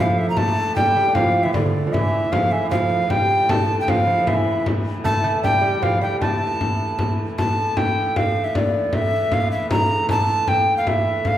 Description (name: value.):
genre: medieval dance.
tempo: 154 BPM.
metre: 3/4.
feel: straight.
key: unclear.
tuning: A4 = 440 Hz.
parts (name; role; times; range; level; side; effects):
mellow hollow tenor recorder; melody; 0.0-11.4 s; D5 to Bb5; -20 LUFS; equal; none.
lute; second line; 0.0-7.1 s; D3 to A3; -25 LUFS; right 2 dB; none.
clear hurdy-gurdy; drone; 0.0-11.4 s; A2 to E3; -29 LUFS; equal; none.
frame drum; percussion; 0.2-11.4 s; none; -22 LUFS; left 1 dB; none.
room: wet recital hall reverb, RT60 1.6 s.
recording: recorded in a church or concert hall.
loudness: -17 LUFS.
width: side -11 dB against mid.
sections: 0.0-7.4 A section; 7.4-11.4 A section.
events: none.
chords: none.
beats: | 0.37 0.76 1.15 | 1.54 1.93 2.32 | 2.71 3.10 3.49 | 3.87 4.26 4.65 | 5.04 5.43 5.82 | 6.21 6.60 6.98 | 7.37 7.76 8.15 | 8.54 8.93 9.31 | 9.70 10.09 10.48 | 10.87 11.25.